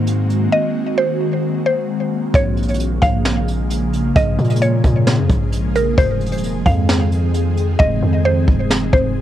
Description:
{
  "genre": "hip hop, atmospheric cloud-rap",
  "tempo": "132 BPM",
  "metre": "4/4",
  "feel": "half-time",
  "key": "Bb minor",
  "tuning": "A4 = 439 Hz",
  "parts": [
    { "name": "mallet-like synth pluck", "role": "melody", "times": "0.0-9.2 s", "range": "Bb4 to F5", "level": "-20 LUFS", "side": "equal", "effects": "chorus, cassette tape, tape echo" },
    { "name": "ethereal airy pad", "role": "sustained chords", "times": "0.0-9.2 s", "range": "Db3 to Ab4", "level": "-20 LUFS", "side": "equal", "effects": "ensemble chorus, built-in reverb, phaser, sidechain pumping, cassette tape" },
    { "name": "long sustained 808-style bass", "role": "bass", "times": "0.0-9.2 s", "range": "Eb1 to Bb2", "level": "-18 LUFS", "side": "equal", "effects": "none" },
    { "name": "jazz brush drum kit", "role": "drums", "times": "0.1-9.0 s", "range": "hi-hat, kick drum, snare drum", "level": "-18 LUFS", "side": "equal", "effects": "cassette tape" }
  ],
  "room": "small room ambience",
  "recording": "home recording on cassette",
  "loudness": "-14 LUFS",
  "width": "side -12 dB against mid",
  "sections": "0.0-2.3 A section; 2.3-9.2 B section",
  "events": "hi-hats muted 7.8-9.2",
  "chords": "0.0 Ab9; 2.3 Bbm7; 6.0 Fm7",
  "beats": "0.07 | 0.52 0.98 1.43 1.89 | 2.34 2.80 3.25 3.71 | 4.16 4.62 5.07 5.52 | 5.98 6.43 6.89 7.34 | 7.80 8.25 8.71 9.16"
}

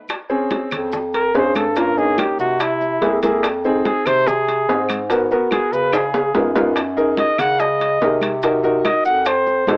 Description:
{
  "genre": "Afro-Cuban jazz",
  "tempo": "144 BPM",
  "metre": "4/4",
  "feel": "straight",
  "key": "Bb minor",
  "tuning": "A4 = 440 Hz",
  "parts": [
    { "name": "bongos", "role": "percussion", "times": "0.1-9.8 s", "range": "none", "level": "-28 LUFS", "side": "left 1 dB", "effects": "none" },
    { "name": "claves", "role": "percussion", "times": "0.1-9.5 s", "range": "none", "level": "-31 LUFS", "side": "right 1 dB", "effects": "none" },
    { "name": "congas", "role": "percussion", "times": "0.1-9.8 s", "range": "none", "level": "-30 LUFS", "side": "equal", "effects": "none" },
    { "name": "maracas", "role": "percussion", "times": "0.1-9.8 s", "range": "none", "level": "-44 LUFS", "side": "right 1 dB", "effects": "none" },
    { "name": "timbales", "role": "percussion", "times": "0.1-9.8 s", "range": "none", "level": "-24 LUFS", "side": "equal", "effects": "none" },
    { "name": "warm upright piano", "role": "accompaniment", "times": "0.3-9.8 s", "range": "Bb3 to Bb4", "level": "-19 LUFS", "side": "equal", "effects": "cassette tape" },
    { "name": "warm bass clarinet", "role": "bass", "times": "0.7-9.8 s", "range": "F2 to Db3", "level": "-23 LUFS", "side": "equal", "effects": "none" },
    { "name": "warm trumpet", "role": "melody", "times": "1.1-9.8 s", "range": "E4 to Gb5", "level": "-18 LUFS", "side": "equal", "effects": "cassette tape" }
  ],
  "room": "moderate spring reverb, RT60 1.2 s, small room ambience",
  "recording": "home recording on cassette, AM radio sound",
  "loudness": "-15 LUFS",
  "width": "side -34 dB against mid",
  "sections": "0.1-9.8 A section",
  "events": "trumpet solo 0.1-9.8; drum fill 5.9-6.8",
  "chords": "0.1 Bbm13 (rootless); 1.8 Gm7b5; 2.6 Caug7; 3.4 Fm7; 5.1 Abm7; 5.9 Db13; 6.8 Gb69; 8.4 Cm7b5; 9.3 F7b9",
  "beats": "| 0.09 0.51 0.93 1.35 | 1.76 2.18 2.60 3.02 | 3.43 3.85 4.27 4.68 | 5.10 5.52 5.93 6.35 | 6.77 7.18 7.60 8.01 | 8.43 8.85 9.26 9.68"
}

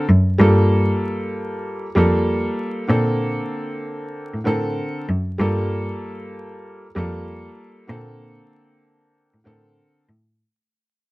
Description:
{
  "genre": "hip hop, boom-bap hip-hop",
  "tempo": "96 BPM",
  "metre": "4/4",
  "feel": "swing 60% on 16ths",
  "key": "G minor",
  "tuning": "A4 = 440 Hz",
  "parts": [
    { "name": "warm upright piano", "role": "accompaniment", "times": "0.0-10.0 s", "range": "D3 to Bb4", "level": "-22 LUFS", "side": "equal", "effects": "cassette tape, plate reverb" },
    { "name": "rich cello", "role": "bass", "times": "0.1-10.4 s", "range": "F2 to Bb2", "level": "-19 LUFS", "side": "equal", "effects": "none" }
  ],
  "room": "light reverb",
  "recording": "vinyl crackle",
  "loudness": "-18 LUFS",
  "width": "side -20 dB against mid",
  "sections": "0.4-10.4 A section",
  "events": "fade-out 0.4-10.4",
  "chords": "0.4 Gm9; 2.9 Bbmaj9; 5.4 Gm9; 7.9 Bbmaj9",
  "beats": "| 0.40 1.02 1.65 2.27 | 2.90 3.52 4.15 4.77 | 5.40 6.02 6.65 7.27 | 7.90 8.52 9.15 9.77"
}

